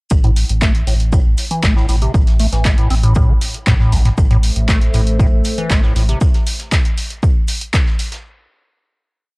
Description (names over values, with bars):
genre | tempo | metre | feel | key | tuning
acid house | 118 BPM | 4/4 | straight | A minor | A4 = 440 Hz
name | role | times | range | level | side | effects
round analog bass | bass | 0.1-6.1 s | A1 | -16 LUFS | equal | sidechain pumping
electronic kick drum | drums | 0.1-7.8 s | none | -15 LUFS | equal | none
vintage brush drum kit | drums | 0.1-8.2 s | hi-hat, shaker, snare drum | -34 LUFS | equal | high-pass filter on hats, high-pass filter on snare, high-pass filter on perc, high-pass filter on room
liquid acid bass | riff | 0.2-6.2 s | A1 to C4 | -19 LUFS | equal | phaser, sidechain pumping, tape echo
punchy analog drum machine | drums | 0.2-8.2 s | handclaps, hi-hat | -22 LUFS | equal | none
dark analog pad | sustained chords | 4.4-6.2 s | A3 to E5 | -25 LUFS | equal | chorus, sidechain pumping
room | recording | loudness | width
small room ambience | dry, gritty hardware recording, cassette tape | -12 LUFS | side -26 dB against mid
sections
0.1-8.2 groove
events
filter sweep on acid bass 0.1-6.2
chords
0.1 Am